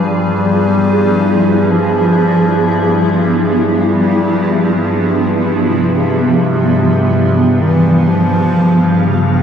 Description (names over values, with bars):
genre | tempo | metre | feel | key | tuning
dark ambient drone | free time | none | none | unclear | A4 = 440 Hz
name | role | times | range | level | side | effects
dark bass clarinet | melody | 0.0-9.4 s | C3 to G3 | -14 LUFS | left 1 dB | shimmer reverb, diffuse ambient delay
granular cloud pad | sustained chords | 0.0-9.4 s | F3 to F5 | -14 LUFS | equal | built-in reverb, shimmer reverb
overtone-sweeping drone | drone | 0.0-9.4 s | G2 | -17 LUFS | equal | chorus, built-in reverb, phaser
room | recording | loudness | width
wet cathedral reverb, RT60 6.2 s | dark, warm production | -10 LUFS | side -8 dB against mid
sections
0.0-9.4 A section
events
none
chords
0.0 Fmadd9